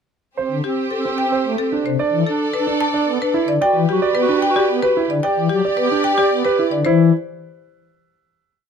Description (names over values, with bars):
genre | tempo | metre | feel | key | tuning
classical, minimalist pattern music | 111 BPM | 3/4 | straight | unclear | A4 = 442 Hz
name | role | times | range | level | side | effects
warm clarinet | second line | 0.4-6.6 s | C4 to G4 | -22 LUFS | right 4 dB | none
rich symphonic string section | sustained chords | 0.4-6.7 s | G4 to D5 | -26 LUFS | right 1 dB | none
warm grand piano | arpeggios | 0.4-7.1 s | C4 to D5 | -21 LUFS | right 7 dB | none
pipe organ, principal | accompaniment | 0.5-7.1 s | C3 to B3 | -20 LUFS | left 4 dB | none
marimba with medium hard mallets | melody | 0.6-7.1 s | G4 to A5 | -21 LUFS | left 6 dB | none
room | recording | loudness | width
little or no reverb | close, detailed microphones | -16 LUFS | side -7 dB against mid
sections
0.4-6.9 A section; 6.9-8.5 final chord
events
none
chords
0.4 Am7; 2.0 Bm7; 3.6 Gmaj7; 6.9 N.C.